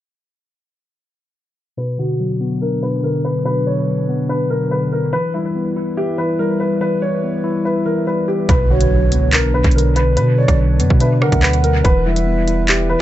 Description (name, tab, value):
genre	hip hop, drill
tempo	143 BPM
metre	4/4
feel	half-time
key	B harmonic minor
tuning	A4 = 441 Hz
part	dark concert grand piano	melody	1.8-13.0 s	E4 to C#5	-21 LUFS	left 1 dB	low-pass filter, dub echo
part	mellow tine electric piano	accompaniment	1.8-13.0 s	B2 to E5	-19 LUFS	left 2 dB	low-pass filter, dub echo
part	dark analog pad	sustained chords	1.8-13.0 s	F#3 to B4	-26 LUFS	right 3 dB	chorus, low-pass filter
part	long sustained 808-style bass	bass	8.5-13.0 s	E1 to D3	-16 LUFS	right 1 dB	none
part	drill drum kit	drums	8.5-12.8 s	handclaps, hi-hat, kick drum, rim click	-17 LUFS	right 1 dB	dub echo
part	impact	sound effects	8.5-10.2 s	none	-25 LUFS	right 1 dB	none
part	mellow hollow concert flute	second line	8.7-12.6 s	C#5 to F#5	-25 LUFS	right 4 dB	dub echo
room	little or no reverb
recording	echo-heavy mix, nothing above 7.9 kHz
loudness	-14 LUFS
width	side -13 dB against mid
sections	1.8-8.5 A section; 8.5-13.0 B section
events	filter sweep 1.8-8.5; impact 8.5-10.2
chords	1.8 Bm; 5.1 Em; 8.5 Bm; 11.8 Em